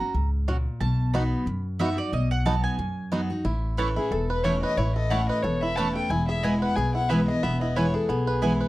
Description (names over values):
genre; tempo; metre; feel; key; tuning
bluegrass; 181 BPM; 4/4; swing 55% on 8ths; unclear; A4 = 441 Hz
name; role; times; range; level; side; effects
picked steel-string acoustic guitar; accompaniment; 0.0-8.7 s; E2 to F#4; -28 LUFS; equal; none
mandolin; stabs; 0.0-8.5 s; A3 to B5; -31 LUFS; right 5 dB; none
upright bass; bass; 0.1-8.6 s; E1 to F#2; -27 LUFS; equal; none
bluegrass banjo; arpeggios; 0.5-8.7 s; B3 to B4; -30 LUFS; right 2 dB; none
dark fiddle; melody; 4.0-8.7 s; G#4 to A5; -28 LUFS; left 3 dB; none
room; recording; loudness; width
light reverb; dry, close 1970s-style studio recording; -23 LUFS; side -17 dB against mid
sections
0.0-3.5 A section; 3.5-8.7 A section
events
mandolin solo 0.0-3.5; fiddle solo 3.5-8.7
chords
0.0 F#; 0.8 B; 3.5 A; 6.1 E